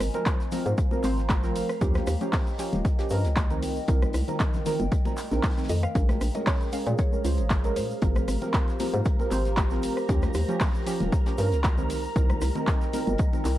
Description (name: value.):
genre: deep house.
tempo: 116 BPM.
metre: 4/4.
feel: swing 54% on 16ths.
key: unclear.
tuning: A4 = 440 Hz.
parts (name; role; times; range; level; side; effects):
mallet-like synth pluck; melody; 0.0-0.2, 5.7-8.5 s; C5 to F5; -38 LUFS; left 2 dB; chorus, phaser, cassette tape, analog delay.
deep mellow chord stab; stabs; 0.0-13.4 s; Eb3 to C5; -31 LUFS; right 2 dB; chorus, sidechain pumping, analog delay.
hollow knocking FM bass; bass; 0.0-13.6 s; Eb1 to Bb2; -27 LUFS; equal; tube saturation, sidechain pumping.
damped 70s drum kit; drums; 0.0-13.6 s; hi-hat, snare drum; -46 LUFS; left 3 dB; high-pass filter on hats, studio reverb, high-pass filter on snare, high-pass filter on room.
deep house drum kit; drums; 0.0-13.6 s; handclaps, hi-hat, rim click; -34 LUFS; equal; overdrive, studio reverb.
egg shaker; percussion; 0.0-13.6 s; none; -49 LUFS; right 2 dB; none.
warbly tape-like pad; texture; 0.0-13.6 s; G4 to Bb5; -36 LUFS; equal; chorus, built-in reverb, sidechain pumping.
congas; percussion; 0.1-13.4 s; none; -37 LUFS; left 4 dB; sidechain pumping on perc.
electronic kick drum; drums; 0.3-13.3 s; none; -25 LUFS; equal; overdrive, studio reverb.
soft string machine; texture; 6.0-13.6 s; Bb4 to Bb5; -40 LUFS; right 1 dB; phaser, ensemble chorus.
room: studio ambience.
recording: dry, gritty hardware recording.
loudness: -23 LUFS.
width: side -14 dB against mid.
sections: 0.0-13.6 A section.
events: none.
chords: 0.0 Ab69; 1.8 Eb9; 3.6 Cm7; 6.0 Bbm7; 8.0 Ab69; 10.1 Eb9; 11.9 Cm7.